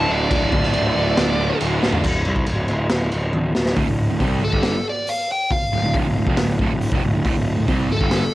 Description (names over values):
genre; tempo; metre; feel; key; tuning
hard rock; 138 BPM; 4/4; straight; D minor; A4 = 437 Hz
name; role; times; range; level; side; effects
smooth overdriven lead guitar; melody; 0.0-1.6, 4.4-8.3 s; A4 to A5; -23 LUFS; equal; cassette tape, tape echo
cranked stack guitar; riff; 0.0-8.2 s; D2 to C4; -25 LUFS; right 6 dB; overdrive
heavy high-gain guitar; riff; 0.0-2.0 s; D2 to F4; -28 LUFS; equal; distortion
overdriven semi-hollow guitar; riff; 0.0-8.2 s; D2 to C4; -29 LUFS; left 6 dB; spring reverb
fuzz picked electric bass; bass; 0.0-8.2 s; D1 to C2; -22 LUFS; equal; overdrive
raw garage drum kit; drums; 0.3-8.2 s; crash cymbal, hi-hat, kick drum, snare drum, toms; -21 LUFS; equal; cassette tape
room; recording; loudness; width
little or no reverb; home recording on cassette; -17 LUFS; side -16 dB against mid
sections
0.0-2.0 A section; 2.0-3.8 B section; 3.8-8.3 C section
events
drum fill 1.8, 3.3-3.8; lead electric guitar solo 3.8-8.3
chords
0.0 Dm; 2.0 N.C.; 3.8 Dm